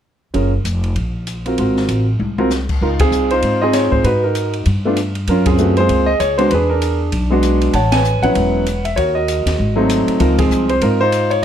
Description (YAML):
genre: jazz piano trio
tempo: 195 BPM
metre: 4/4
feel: swing 60% on 8ths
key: Db major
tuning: A4 = 440 Hz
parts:
  - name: warm grand piano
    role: melody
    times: 0.3-11.4 s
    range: F3 to A5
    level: -15 LUFS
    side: right 1 dB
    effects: none
  - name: upright bass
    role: bass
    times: 0.3-11.4 s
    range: E1 to A2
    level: -18 LUFS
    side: equal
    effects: none
  - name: open jazz drum kit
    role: drums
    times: 0.3-11.4 s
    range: crash cymbal, hi-hat, kick drum, ride cymbal, snare drum, toms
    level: -24 LUFS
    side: left 2 dB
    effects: none
room: light reverb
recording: dark, warm production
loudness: -14 LUFS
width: side -9 dB against mid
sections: 0.3-2.8 A section; 2.8-11.4 B section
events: drum fill 2.2-2.5; band accent 3.0, 5.4, 7.9, 10.4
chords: 0.3 Gbmaj7; 1.6 Ab13; 2.8 Dbmaj9; 4.0 Absus2; 4.7 N.C.; 5.3 Gbmaj9#11; 6.5 E7; 7.7 A69; 9.0 Ebm; 9.6 Ab7b9; 10.2 Dbmaj9